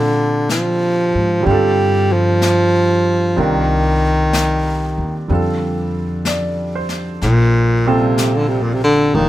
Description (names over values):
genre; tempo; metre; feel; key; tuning
jazz ballad; 62 BPM; 4/4; swing 67% on 8ths; Bb major; A4 = 441 Hz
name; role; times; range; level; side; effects
mellow baritone saxophone; melody; 0.0-9.3 s; Bb2 to G3; -15 LUFS; equal; none
clear baby grand piano; accompaniment; 0.0-9.3 s; Bb2 to D5; -21 LUFS; right 2 dB; none
upright bass; bass; 0.0-9.3 s; F1 to Bb2; -19 LUFS; left 1 dB; none
jazz brush drum kit; drums; 0.5-9.3 s; brushed snare drum, hi-hat, snare drum; -26 LUFS; left 3 dB; none
room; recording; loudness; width
light reverb; none; -14 LUFS; side -14 dB against mid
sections
0.0-9.3 A section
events
none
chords
0.0 Bb69; 1.5 G9sus4; 3.4 Cm9; 5.3 Fadd9; 7.2 Bbmaj7